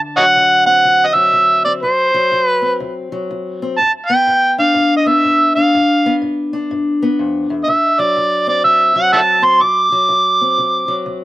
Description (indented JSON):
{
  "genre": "acoustic country blues, solo or duo",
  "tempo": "123 BPM",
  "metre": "4/4",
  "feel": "swing 63% on 8ths",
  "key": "D mixolydian",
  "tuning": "A4 = 440 Hz",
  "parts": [
    { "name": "fingerpicked steel-string acoustic guitar", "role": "accompaniment", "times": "0.0-11.2 s", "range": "D2 to D4", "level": "-19 LUFS", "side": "left 2 dB", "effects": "none" },
    { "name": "overdriven harmonica", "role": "melody", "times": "0.2-11.1 s", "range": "C5 to D6", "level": "-11 LUFS", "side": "right 1 dB", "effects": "slapback echo" }
  ],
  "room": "little or no reverb",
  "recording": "recorded outdoors, with no room sound",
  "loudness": "-11 LUFS",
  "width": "side -16 dB against mid",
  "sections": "0.0-11.2 A section",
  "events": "none",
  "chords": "0.0 D7; 3.8 G7; 7.7 D7"
}